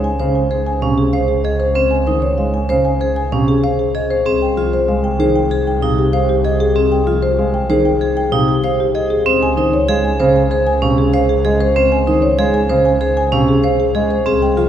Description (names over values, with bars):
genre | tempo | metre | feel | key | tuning
classical, minimalist pattern music | 96 BPM | 4/4 | straight | unclear | A4 = 443 Hz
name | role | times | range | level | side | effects
marimba with medium mallets | melody | 0.0-14.7 s | G4 to Ab5 | -17 LUFS | left 4 dB | none
dark grand piano | accompaniment | 0.0-14.7 s | C3 to Ab3 | -20 LUFS | equal | none
warm double bass | bass | 0.0-14.7 s | C2 to Db2 | -20 LUFS | right 2 dB | none
vibraphone with hard mallets | arpeggios | 0.2-14.7 s | C4 to C5 | -20 LUFS | right 6 dB | none
room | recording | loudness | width
wet cathedral reverb, RT60 5.9 s | recorded in a church or concert hall | -13 LUFS | side -10 dB against mid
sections
0.0-14.7 A section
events
none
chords
0.0 Dbmaj7; 4.3 Abmaj7/C; 9.3 Dbmaj7